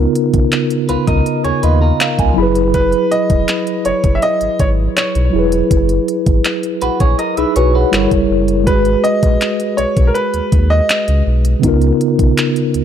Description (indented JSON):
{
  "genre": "contemporary R&B",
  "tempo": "81 BPM",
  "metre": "4/4",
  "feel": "straight",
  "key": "unclear",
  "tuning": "A4 = 440 Hz",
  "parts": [
    { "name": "mellow tine electric piano", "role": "accompaniment", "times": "0.0-12.8 s", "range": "C#3 to B5", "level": "-16 LUFS", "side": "equal", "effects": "medium stereo tremolo" },
    { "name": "sub bass with octave", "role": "bass", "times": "0.0-12.8 s", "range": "E1 to D#2", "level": "-16 LUFS", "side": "equal", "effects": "none" },
    { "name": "smooth R&B drum kit", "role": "drums", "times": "0.2-12.8 s", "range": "handclaps, hi-hat, kick drum", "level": "-16 LUFS", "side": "equal", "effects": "none" },
    { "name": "clean electric guitar", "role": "arpeggios", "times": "0.9-2.3, 6.8-8.1 s", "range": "E#4 to E5", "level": "-20 LUFS", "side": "right 3 dB", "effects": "none" },
    { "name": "clear baby grand piano", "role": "melody", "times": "2.7-11.2 s", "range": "A#4 to E5", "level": "-17 LUFS", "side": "right 1 dB", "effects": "ping-pong delay" }
  ],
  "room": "digital ambience",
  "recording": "none",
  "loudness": "-12 LUFS",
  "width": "side -9 dB against mid",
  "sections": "0.0-12.8 A section",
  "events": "tine electric piano fill 1.3-2.7",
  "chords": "0.0 C#13; 2.4 F#9sus4; 7.9 Gdim7; 8.7 G#m7; 11.6 C#13"
}